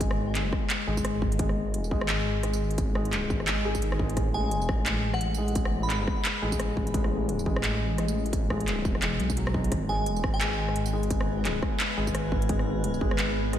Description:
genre	half-time drum and bass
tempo	173 BPM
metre	4/4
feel	swing 58% on 16ths, half-time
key	G# phrygian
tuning	A4 = 440 Hz
part	felt-muted upright piano	arpeggios	0.0-13.6 s	D#3 to G#4	-31 LUFS	left 3 dB	vintage 12-bit sampler grit, diffuse ambient delay
part	dark detuned saw bass	bass	0.0-13.6 s	E1 to B1	-29 LUFS	equal	none
part	electronic kick drum	drums	0.0-13.1 s	none	-30 LUFS	equal	distortion, overdrive, studio reverb
part	industrial drum kit	drums	0.0-13.6 s	handclaps, hi-hat, rim click, tambourine	-32 LUFS	right 1 dB	overdrive, studio reverb
part	glassy synth bell	melody	4.3-6.0, 9.9-10.6 s	F#5 to B5	-37 LUFS	equal	chorus, diffuse ambient delay
part	metallic inharmonic drone	texture	10.6-13.6 s	B3 to B4	-36 LUFS	right 2 dB	chorus, built-in reverb
room	moderate lush hall reverb, RT60 2.0 s, digital ambience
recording	dreamy mix soaked in reverb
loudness	-25 LUFS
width	side -10 dB against mid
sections	0.0-13.6 A section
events	none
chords	0.0 G#5; 4.2 N.C.; 9.7 G#m

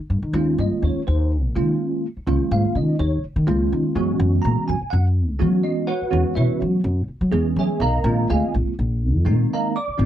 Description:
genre	electric jazz fusion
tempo	124 BPM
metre	4/4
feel	straight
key	unclear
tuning	A4 = 436 Hz
part	upright bass	bass	0.0-10.1 s	Ab1 to Gb3	-20 LUFS	equal	none
part	bell-like tine electric piano	accompaniment	0.3-10.1 s	Eb3 to D6	-22 LUFS	right 2 dB	fast stereo tremolo, ensemble chorus
room	light reverb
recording	dry, close 1970s-style studio recording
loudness	-18 LUFS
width	side -11 dB against mid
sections	0.3-10.1 A section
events	none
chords	0.3 Eb9sus4; 4.0 Gb9sus4; 8.1 Bb9sus4

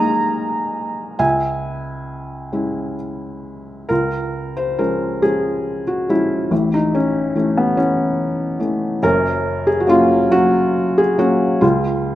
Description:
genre	classical, lyrical solo piano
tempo	43-49 BPM (dotted quarters)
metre	6/8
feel	rubato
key	unclear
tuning	A4 = 436 Hz
part	felt-muted upright piano	solo	0.0-12.2 s	Gb1 to A#5	-16 LUFS	equal	none
room	moderate recital hall reverb, RT60 1.4 s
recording	none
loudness	-16 LUFS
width	side -14 dB against mid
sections	0.0-3.9 A section; 3.9-12.2 B section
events	none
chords	0.0 G#sus2; 1.2 C#m; 3.9 Db; 6.5 A; 9.0 Gb; 11.6 Db

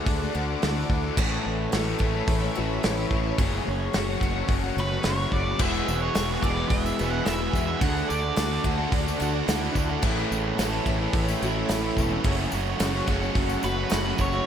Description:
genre	rock, shoegaze and dream pop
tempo	108 BPM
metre	4/4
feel	straight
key	unclear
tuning	A4 = 440 Hz
part	soft string machine	sustained chords	0.0-14.5 s	G#4 to D6	-35 LUFS	equal	phaser, ensemble chorus
part	picked twelve-string acoustic guitar	arpeggios	0.0-14.5 s	E4 to G#4	-36 LUFS	right 1 dB	ensemble chorus, slapback echo
part	cranked stack guitar	riff	0.0-14.5 s	E2 to D4	-32 LUFS	left 1 dB	overdrive, spring reverb
part	overdriven semi-hollow guitar	riff	0.0-14.5 s	A2 to F#4	-32 LUFS	left 10 dB	ensemble chorus
part	fuzz fingered electric bass	bass	0.1-14.4 s	E1 to E2	-29 LUFS	equal	overdrive
part	loose indie drum kit	drums	0.1-14.3 s	crash cymbal, hi-hat, kick drum, snare drum	-28 LUFS	equal	none
part	octave-fuzz lead guitar	melody	4.8-8.6, 13.6-14.5 s	B4 to F#5	-32 LUFS	right 2 dB	distortion, slapback echo
part	overdriven semi-hollow guitar	riff	5.6-14.5 s	E2 to G#4	-31 LUFS	right 12 dB	reverse reverb
part	tambourine	percussion	5.7-14.4 s	none	-42 LUFS	left 8 dB	none
room	light reverb, small room ambience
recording	none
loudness	-23 LUFS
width	side -9 dB against mid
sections	0.0-14.5 A section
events	none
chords	0.0 D; 1.2 Aadd9; 3.4 F#m; 5.6 Eadd9; 7.8 D; 10.0 Aadd9; 12.3 F#m

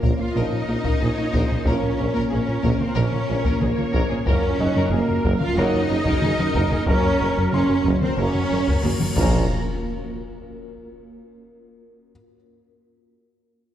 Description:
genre	cinematic, hybrid orchestral and electronic film score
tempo	92 BPM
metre	4/4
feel	straight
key	Bb minor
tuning	A4 = 441 Hz
part	clear symphonic violin section	melody	0.0-9.5 s	Ab4 to Bb4	-34 LUFS	left 4 dB	low-pass filter
part	rich studio violin section	second line	0.0-9.5 s	Bb4 to Bb5	-32 LUFS	left 4 dB	none
part	ethereal airy pad	sustained chords	0.0-9.5 s	Bb3 to Bb4	-31 LUFS	left 2 dB	ensemble chorus, built-in reverb, low-pass filter
part	soft round pluck	arpeggios	0.0-9.1 s	Gb3 to Bb4	-31 LUFS	left 2 dB	none
part	rubbery square bass	riff	0.0-9.1 s	Gb2 to Bb3	-28 LUFS	equal	low-pass filter
part	clear tuba	bass	0.0-9.5 s	Gb1 to Bb1	-29 LUFS	right 2 dB	none
part	rich symphonic cello section	bass	0.0-9.5 s	Bb3 to F4	-25 LUFS	right 2 dB	none
part	warm symphonic double bass section	bass	0.0-9.5 s	Gb1 to Bb1	-27 LUFS	right 2 dB	none
part	taiko ensemble	drums	0.0-10.4 s	none	-26 LUFS	left 1 dB	none
part	impact and cymbal swell	sound effects	0.0-1.7, 8.6-11.8 s	none	-29 LUFS	left 1 dB	none
part	warm grand piano	texture	0.0-9.5 s	Eb4 to C6	-35 LUFS	left 1 dB	digital delay
part	rich studio viola section	accompaniment	0.4-9.5 s	Db4 to Db5	-32 LUFS	equal	low-pass filter
part	mellow French horn section	sustained chords	0.4-9.5 s	Bb4 to Db5	-33 LUFS	left 2 dB	none
part	warm trombone section	sustained chords	0.4-9.5 s	F3 to Db4	-33 LUFS	right 2 dB	low-pass filter
room	wet concert hall reverb, RT60 2.1 s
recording	dark, warm production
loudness	-18 LUFS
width	side -11 dB against mid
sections	0.0-9.5 A section; 9.5-12.1 B section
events	impact 0.0-1.7, 9.5-12.1; filter sweep 0.0-9.5; cymbal swell 8.6-9.5; drum fill 8.8-9.5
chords	0.0 Bbm; 4.3 Gb; 9.2 Bbm; 9.5 N.C.

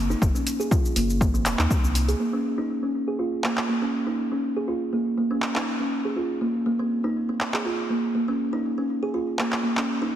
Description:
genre	afro house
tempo	121 BPM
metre	4/4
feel	swing 54% on 16ths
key	Bb minor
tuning	A4 = 440 Hz
part	warm sub bass	bass	0.0-2.1 s	Eb1 to Eb2	-25 LUFS	left 1 dB	sidechain pumping
part	kalimba	arpeggios	0.1-10.1 s	Bb3 to Ab4	-24 LUFS	right 1 dB	sidechain pumping, low-pass filter, tape echo
part	deep house drum kit	drums	0.1-9.9 s	handclaps, hi-hat, shaker	-29 LUFS	equal	overdrive, studio reverb
part	electronic kick drum	drums	0.2-1.8 s	none	-22 LUFS	left 1 dB	overdrive, studio reverb
room	light reverb, digital ambience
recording	heavily compressed radio sound, multiband compression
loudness	-22 LUFS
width	side -11 dB against mid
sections	0.0-2.2 A section; 2.2-10.2 B section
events	filter sweep on kalimba 2.2-10.2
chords	0.2 Gb; 1.2 Ab; 2.2 Bbm7; 6.2 N.C.; 8.2 Bbmadd11

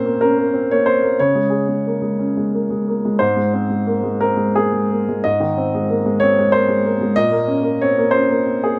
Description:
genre	neoclassical minimalist piano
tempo	60 BPM (dotted quarters)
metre	6/8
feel	uneven beats, rubato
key	Ab major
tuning	A4 = 441 Hz
part	warm baby grand piano	solo	0.0-8.8 s	Ab2 to Eb5	-18 LUFS	equal	none
room	moderate booth ambience, RT60 0.3 s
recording	none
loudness	-18 LUFS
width	mono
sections	0.0-8.8 A section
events	none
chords	0.0 Bbm; 1.2 Db5; 3.2 Ab; 7.2 Bbm

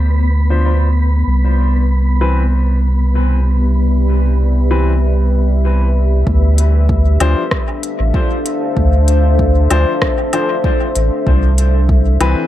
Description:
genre	ambient dub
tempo	96 BPM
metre	4/4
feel	swing 53% on 16ths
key	D dorian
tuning	A4 = 440 Hz
part	deep dark ambient pad	sustained chords	0.3-12.5 s	B3 to F5	-20 LUFS	left 2 dB	chorus, built-in reverb
part	soft dub sub bass	bass	0.0-12.4 s	A1 to D2	-12 LUFS	equal	none
part	wind-like tuned noise texture	texture	0.0-6.3 s	B3 to B5	-25 LUFS	left 1 dB	built-in reverb
part	clear upright piano	stabs	0.5-12.4 s	E3 to C5	-22 LUFS	left 4 dB	low-pass filter, dub echo
part	electronic kick drum	drums	6.3-12.0 s	none	-17 LUFS	equal	overdrive
part	organic electronic drum kit	drums	6.6-12.3 s	hi-hat, rim click, woodblock	-21 LUFS	left 1 dB	low-pass filter on hats, low-pass filter on perc, low-pass filter on snare, low-pass filter on room, dub echo
room	light reverb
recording	echo-heavy mix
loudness	-12 LUFS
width	side -13 dB against mid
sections	0.0-6.3 A section; 6.3-12.5 B section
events	filter sweep on ambient pad 0.0-6.3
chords	0.0 Dm7; 1.3 Cmaj7; 6.3 Dm7; 11.3 Cmaj7

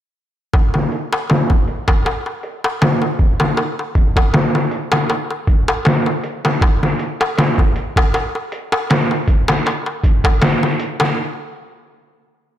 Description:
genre	trip hop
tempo	79 BPM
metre	4/4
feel	swing 54% on 16ths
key	none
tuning	none
part	trip hop sampler-style drum kit	drums	0.5-11.2 s	hi-hat, kick drum, snare drum	-15 LUFS	equal	overdrive, low-pass filter on kick, low-pass filter on hats, low-pass filter on snare, low-pass filter on room
part	darbuka	percussion	0.5-11.1 s	none	-21 LUFS	left 1 dB	none
room	moderate plate reverb, RT60 1.9 s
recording	blown-out, overdriven recording, overdrive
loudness	-14 LUFS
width	side -12 dB against mid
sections	0.5-12.6 A section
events	stop 11.2-12.6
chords	none

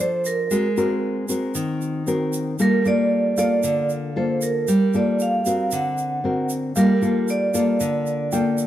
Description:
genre	bossa nova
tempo	115 BPM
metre	4/4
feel	straight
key	G minor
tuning	A4 = 440 Hz
part	vibraphone with medium hard mallets	melody	0.0-8.7 s	Bb4 to F#5	-23 LUFS	right 4 dB	none
part	nylon-string guitar	accompaniment	0.0-8.7 s	D3 to C5	-21 LUFS	left 1 dB	none
part	tube shaker	percussion	0.2-8.7 s	none	-33 LUFS	right 4 dB	none
part	clear baby grand piano	accompaniment	3.4-8.7 s	F5 to G5	-34 LUFS	right 3 dB	none
room	light reverb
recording	none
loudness	-19 LUFS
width	side -12 dB against mid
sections	0.0-6.8 A section; 6.8-8.7 A section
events	none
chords	0.0 Bbmaj9; 0.5 Ab9; 2.6 Gm9; 5.7 Daug7; 6.8 Gm9

